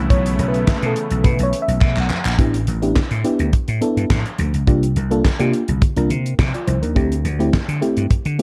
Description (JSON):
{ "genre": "early-eighties boogie funk", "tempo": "105 BPM", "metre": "4/4", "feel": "straight", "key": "A mixolydian", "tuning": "A4 = 440 Hz", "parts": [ { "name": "mellow FM electric piano", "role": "accompaniment", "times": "0.0-8.4 s", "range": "E3 to F#5", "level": "-24 LUFS", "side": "equal", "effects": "chorus" }, { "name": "brassy analog pad", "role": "sustained chords", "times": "0.0-2.4 s", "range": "C#3 to E4", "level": "-30 LUFS", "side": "equal", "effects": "chorus" }, { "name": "vintage slap bass", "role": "bass", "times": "0.0-8.4 s", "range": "A1 to D3", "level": "-22 LUFS", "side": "equal", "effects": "none" }, { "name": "damped 70s drum kit", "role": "drums", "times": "0.1-8.4 s", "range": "handclaps, hi-hat, kick drum, snare drum", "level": "-21 LUFS", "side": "equal", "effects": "none" }, { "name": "congas", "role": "percussion", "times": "0.1-8.2 s", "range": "none", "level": "-30 LUFS", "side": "equal", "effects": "none" } ], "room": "light reverb, small room ambience", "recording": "dark, warm production", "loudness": "-18 LUFS", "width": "mono", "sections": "0.0-2.4 A section; 2.4-8.4 B section", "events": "FM electric piano solo 0.0-2.4; drum fill 1.8-2.4", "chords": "0.0 B9sus4; 2.4 A9sus4; 4.7 C9sus4; 7.0 D9sus4" }